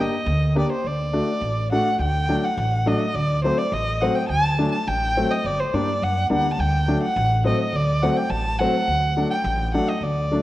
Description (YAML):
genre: klezmer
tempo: 105 BPM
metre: 2/4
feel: straight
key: D phrygian dominant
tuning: A4 = 440 Hz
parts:
  - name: rich violin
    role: melody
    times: 0.0-10.4 s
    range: C5 to A5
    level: -24 LUFS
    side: equal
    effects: none
  - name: clear upright piano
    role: accompaniment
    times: 0.0-10.4 s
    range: F#3 to G4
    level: -24 LUFS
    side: left 1 dB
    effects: none
  - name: upright bass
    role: bass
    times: 0.0-10.4 s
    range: G1 to G2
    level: -24 LUFS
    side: right 1 dB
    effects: none
room: wet recital hall reverb, RT60 1.5 s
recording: worn, warbling old tape, cassette tape, warbly pitch drift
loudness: -19 LUFS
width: side -15 dB against mid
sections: 0.0-2.0 A section; 2.0-10.4 B section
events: none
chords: 0.0 Gm; 0.8 D; 5.4 Gm; 6.6 D